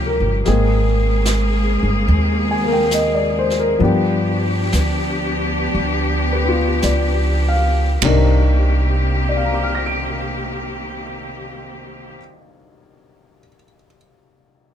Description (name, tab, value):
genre	jazz ballad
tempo	47-75 BPM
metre	4/4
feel	swing 68% on 8ths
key	C minor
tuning	A4 = 440 Hz
part	warm baby grand piano	accompaniment	0.0-14.7 s	C3 to D7	-20 LUFS	left 2 dB	none
part	rich studio cello section	sustained chords	0.0-12.1 s	Eb3 to Ab4	-22 LUFS	left 1 dB	none
part	upright bass	bass	0.0-12.1 s	G1 to G2	-18 LUFS	right 1 dB	none
part	jazz brush drum kit	drums	0.5-9.1 s	brushed snare drum, hi-hat, kick drum, ride cymbal, snare drum, toms	-26 LUFS	right 2 dB	none
room	light reverb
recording	none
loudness	-15 LUFS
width	side -9 dB against mid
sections	0.4-8.0 A section; 8.0-13.1 B section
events	slowing down 0.4-8.0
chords	0.4 Abmaj9; 3.8 G7; 8.0 Cm7